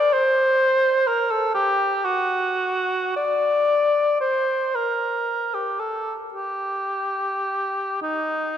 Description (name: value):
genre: classical, free, expressive piece for unaccompanied cor anglais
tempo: 28-44 BPM (dotted quarters)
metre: 6/8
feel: rubato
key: G minor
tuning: A4 = 440 Hz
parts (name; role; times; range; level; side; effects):
- warm cor anglais; solo; 0.0-8.6 s; Eb4 to D5; -20 LUFS; equal; none
room: wet church reverb, RT60 3.4 s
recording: dark, warm production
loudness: -20 LUFS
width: side -9 dB against mid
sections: 0.0-8.6 A section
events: none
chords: none